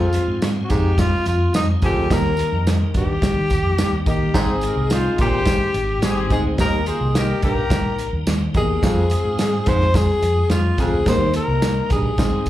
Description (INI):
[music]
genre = uptempo 1960s-style soul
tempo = 107 BPM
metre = 4/4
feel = straight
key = unclear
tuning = A4 = 440 Hz
[part]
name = breathy tenor saxophone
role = melody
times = 0.0-12.5 s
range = Eb4 to C5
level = -22 LUFS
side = left 2 dB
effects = plate reverb, slapback echo
[part]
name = clear upright piano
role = accompaniment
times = 0.0-12.5 s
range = Ab2 to Ab5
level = -29 LUFS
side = left 3 dB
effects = plate reverb, slapback echo
[part]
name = tonewheel organ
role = sustained chords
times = 0.0-12.5 s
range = G3 to F4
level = -33 LUFS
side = left 1 dB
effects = overdrive, chorus vibrato, fast rotary speaker
[part]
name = breathy baritone saxophone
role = riff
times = 0.0-12.1 s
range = Eb2 to Bb2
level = -24 LUFS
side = right 2 dB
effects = slapback echo
[part]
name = vintage muted fingered electric bass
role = bass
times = 0.0-12.5 s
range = Ab1 to Eb3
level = -21 LUFS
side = equal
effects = none
[part]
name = warm soul drum kit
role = drums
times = 0.1-12.5 s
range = hi-hat, kick drum, snare drum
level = -21 LUFS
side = right 1 dB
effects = none
[part]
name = tambourine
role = percussion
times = 0.1-12.5 s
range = none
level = -38 LUFS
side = right 2 dB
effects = none
[part]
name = warm horn section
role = second line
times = 4.3-8.0 s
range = Ab3 to C5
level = -28 LUFS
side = left 3 dB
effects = plate reverb, slapback echo
[sound]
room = light reverb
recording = live gig heard through the venue's PA, club reverb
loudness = -16 LUFS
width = side -14 dB against mid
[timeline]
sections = 0.0-12.5 A section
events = none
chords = 0.0 Fm; 2.1 Eb; 4.3 Ab; 6.6 Eb; 8.8 Fm; 11.1 Eb